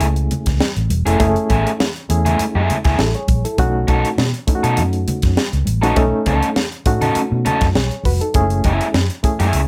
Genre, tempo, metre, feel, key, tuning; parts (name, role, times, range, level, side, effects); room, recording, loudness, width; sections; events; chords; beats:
funk; 101 BPM; 4/4; straight; F# dorian; A4 = 438 Hz
crunchy overdriven guitar; accompaniment; 0.0-9.6 s; A3 to A4; -22 LUFS; equal
reed electric piano; stabs; 0.0-9.7 s; A3 to C#5; -24 LUFS; equal; overdrive, fast tremolo
vintage muted fingered electric bass; bass; 0.0-9.7 s; E1 to B2; -21 LUFS; equal
tight funk drum kit; drums; 0.0-9.7 s; hi-hat, kick drum, snare drum; -22 LUFS; equal
congas; percussion; 0.3-9.7 s; -30 LUFS; equal
light reverb; -17 LUFS; mono
0.0-9.7 A section
0.0 F#m9 (rootless); 3.6 B9; 8.3 F#m9
0.01 0.61 | 1.20 1.80 2.40 2.99 | 3.59 4.18 4.78 5.37 | 5.97 6.56 7.16 7.75 | 8.35 8.94 9.54